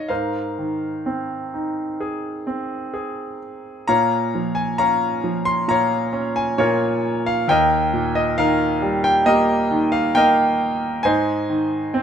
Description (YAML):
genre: classical, lyrical solo piano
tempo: 61-68 BPM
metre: 4/4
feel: rubato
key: Ab major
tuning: A4 = 440 Hz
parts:
  - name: bright concert grand piano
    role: solo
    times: 0.0-12.0 s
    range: Eb2 to C6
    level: -18 LUFS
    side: equal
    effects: none
room: light reverb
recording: none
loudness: -18 LUFS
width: side -8 dB against mid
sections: 0.1-12.0 A section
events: none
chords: 0.1 Abadd9; 3.9 Bbm; 7.5 Eb; 11.1 Ab